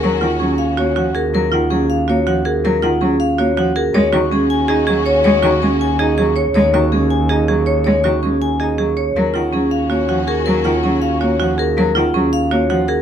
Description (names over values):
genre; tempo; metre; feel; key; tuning
classical, minimalist pattern music; 322 BPM (eighths); 7/8; straight; Eb minor; A4 = 440 Hz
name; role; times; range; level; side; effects
vibraphone with hard mallets; melody; 0.0-13.0 s; Ab4 to Db6; -20 LUFS; left 8 dB; none
warm cello; accompaniment; 0.0-12.8 s; Eb3 to Eb4; -20 LUFS; equal; none
rich symphonic string section; sustained chords; 0.0-1.1, 3.9-6.3, 9.2-11.5 s; Db4 to Gb4; -27 LUFS; left 4 dB; none
marimba with medium hard mallets; arpeggios; 0.0-13.0 s; Db4 to Db5; -18 LUFS; right 4 dB; none
rich double bass; bass; 0.0-13.0 s; Eb2; -21 LUFS; right 2 dB; none
room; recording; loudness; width
light reverb; none; -14 LUFS; side -9 dB against mid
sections
0.0-13.0 A section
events
none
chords
0.0 Ebm9; 3.9 Gbsus2/Eb; 9.2 Ebm9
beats
| 0.03 0.22 0.40 0.59 0.78 0.96 1.15 | 1.33 1.52 1.71 1.89 2.08 2.27 2.45 | 2.64 2.83 3.01 3.20 3.38 3.57 3.76 | 3.94 4.13 4.32 4.50 4.69 4.88 5.06 | 5.25 5.43 5.62 5.81 5.99 6.18 6.37 | 6.55 6.74 6.92 7.11 7.30 7.48 7.67 | 7.86 8.04 8.23 8.41 8.60 8.79 8.97 | 9.16 9.35 9.53 9.72 9.91 10.09 10.28 | 10.46 10.65 10.84 11.02 11.21 11.40 11.58 | 11.77 11.96 12.14 12.33 12.52 12.70 12.89